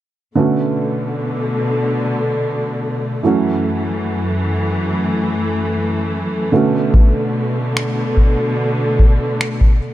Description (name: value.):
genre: contemporary R&B.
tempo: 73 BPM.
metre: 4/4.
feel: straight.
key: B minor.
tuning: A4 = 440 Hz.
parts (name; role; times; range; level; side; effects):
felt-muted upright piano; accompaniment; 0.4-9.9 s; D3 to F#4; -20 LUFS; right 3 dB; none.
rich studio string section; sustained chords; 0.4-9.9 s; F#2 to A3; -18 LUFS; left 1 dB; none.
booming analog drum machine; drums; 6.9-9.8 s; finger snaps, kick drum; -12 LUFS; equal; none.
room: little or no reverb.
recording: dark, warm production.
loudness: -15 LUFS.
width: side -14 dB against mid.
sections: 0.4-9.9 A section.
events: none.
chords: 0.4 Bm7; 3.2 F#m7; 6.5 Bm7.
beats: | 0.36 1.19 2.01 2.83 | 3.65 4.47 5.30 6.12 | 6.94 7.76 8.58 9.41.